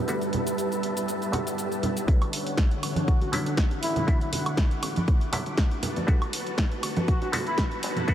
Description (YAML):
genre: filtered disco house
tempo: 120 BPM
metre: 4/4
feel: swing 54% on 16ths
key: D major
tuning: A4 = 440 Hz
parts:
  - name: muted clav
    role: accompaniment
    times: 0.0-8.1 s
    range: D3 to F#4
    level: -35 LUFS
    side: equal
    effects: phaser, sidechain pumping, low-pass filter
  - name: string machine, full ensemble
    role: sustained chords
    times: 0.0-8.1 s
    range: D3 to D6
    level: -30 LUFS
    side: equal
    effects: ensemble chorus, sidechain pumping, low-pass filter
  - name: punchy analog drum machine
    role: drums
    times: 0.1-8.1 s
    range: hi-hat, shaker, snare drum, woodblock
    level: -32 LUFS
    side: equal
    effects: sidechain pumping on hats, sidechain pumping on perc
  - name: tambourine and congas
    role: percussion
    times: 0.1-8.1 s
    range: none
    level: -32 LUFS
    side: right 2 dB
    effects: sidechain pumping on perc, low-pass filter on perc
  - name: fingered electric bass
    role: bass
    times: 2.1-8.1 s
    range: G1 to G2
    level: -39 LUFS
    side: equal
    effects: none
  - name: electronic kick drum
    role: drums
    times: 2.1-8.1 s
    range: none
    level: -23 LUFS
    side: equal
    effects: none
  - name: brilliant horn section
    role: melody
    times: 3.1-7.6 s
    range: E4 to F#4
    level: -34 LUFS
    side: left 1 dB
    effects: vintage 12-bit sampler grit, sidechain pumping, low-pass filter, ping-pong delay
room: moderate huge ambient reverb, RT60 8.7 s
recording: dreamy mix soaked in reverb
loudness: -24 LUFS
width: side -11 dB against mid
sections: 0.0-2.1 A section; 2.1-8.1 B section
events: build-up 2.1-8.1; filter sweep on horn section 2.1-8.1; filter sweep 2.1-8.1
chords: 0.0 Gmaj9; 2.1 Dmaj7; 5.8 Gmaj9